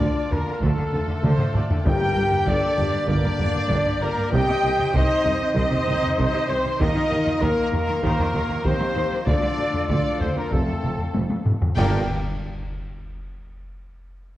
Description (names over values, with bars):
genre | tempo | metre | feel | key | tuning
cinematic, epic orchestral film score | 97 BPM | 4/4 | straight | G minor | A4 = 441 Hz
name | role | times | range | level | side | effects
rich symphonic violin section | melody | 0.0-12.1 s | A4 to G5 | -32 LUFS | left 2 dB | none
concert flute | second line | 0.0-12.1 s | A4 to G5 | -31 LUFS | left 1 dB | none
warm symphonic violin section | second line | 0.0-12.1 s | A4 to G5 | -36 LUFS | left 2 dB | none
rich symphonic viola section | accompaniment | 0.0-12.1 s | D4 to Eb5 | -32 LUFS | equal | none
mellow French horn section | sustained chords | 0.0-12.0 s | A3 to G4 | -28 LUFS | left 3 dB | none
warm woodwind section | sustained chords | 0.0-12.0 s | Bb3 to A5 | -35 LUFS | equal | none
clear trumpet section | stabs | 0.0-12.0 s | Bb3 to G5 | -28 LUFS | right 1 dB | none
mellow tuba | bass | 0.0-12.0 s | F1 to Eb2 | -30 LUFS | right 2 dB | none
warm symphonic cello section | bass | 0.0-12.1 s | F2 to Eb3 | -30 LUFS | right 1 dB | none
warm symphonic double bass section | bass | 0.0-12.1 s | F1 to Eb2 | -28 LUFS | right 1 dB | none
taiko ensemble | drums | 0.0-11.9 s | none | -25 LUFS | equal | none
timpani | percussion | 0.0-2.7, 11.8-12.1 s | G2 to D3 | -31 LUFS | left 1 dB | none
mellow trombone section | sustained chords | 0.6-12.0 s | D3 to C4 | -37 LUFS | right 3 dB | none
clash cymbals and concert bass drum | percussion | 11.8-13.0 s | none | -33 LUFS | equal | none
room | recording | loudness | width
moderate scoring stage reverb, RT60 2.0 s | worn, warbling old tape, cassette tape, warbly pitch drift | -19 LUFS | side -14 dB against mid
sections
0.0-11.8 A section; 11.8-14.2 B section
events
drum fill 1.2-1.9, 11.2-11.8; band accent 11.8-12.4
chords
0.0 Dm; 1.9 Gm; 4.3 Cm; 6.8 Ebsus2; 9.3 Dm; 10.5 F; 11.8 Gm